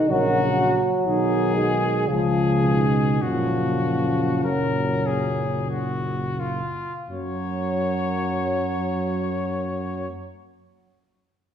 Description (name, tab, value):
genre	classical, hymn-like piece for brass band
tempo	42-63 BPM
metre	3/4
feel	rubato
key	F# major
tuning	A4 = 439 Hz
part	dark French horn section	second line	0.0-10.1 s	A#3 to A#4	-29 LUFS	right 4 dB	none
part	mellow trombone	accompaniment	0.0-10.1 s	A#2 to F#3	-30 LUFS	right 1 dB	none
part	warm euphonium	accompaniment	0.0-10.1 s	E#3 to D#4	-25 LUFS	left 2 dB	none
part	bright cornet	melody	0.1-10.1 s	E#4 to C#5	-28 LUFS	left 3 dB	none
part	mellow tuba	bass	0.1-10.1 s	F#1 to F#2	-26 LUFS	equal	none
room	wet recital hall reverb, RT60 1.6 s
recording	heard from further back in the room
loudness	-21 LUFS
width	side -8 dB against mid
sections	0.0-7.1 A section; 7.1-11.1 B section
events	slowing down 0.0-7.1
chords	0.1 F#/A#; 1.1 G#m7/B; 2.1 C#; 3.2 F#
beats	| 0.09 1.05 2.08 | 3.21 4.43 5.71 | 7.09 8.42 9.75